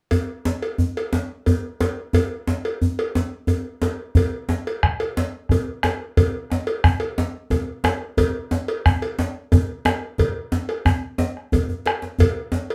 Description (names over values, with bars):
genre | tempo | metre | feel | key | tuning
west african traditional, West African drum ensemble | 119 BPM (dotted quarters) | 12/8 | straight | none | none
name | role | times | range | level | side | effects
cowbell | percussion | 0.1-12.7 s | none | -28 LUFS | equal | none
djembe | percussion | 0.1-12.7 s | none | -24 LUFS | equal | none
bombo | percussion | 4.2-12.6 s | none | -22 LUFS | equal | none
room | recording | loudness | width
moderate studio ambience, RT60 0.5 s | band playing live in one room | -22 LUFS | mono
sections
0.1-4.2 A section; 4.2-12.7 B section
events
drum fill 11.7-12.2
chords
none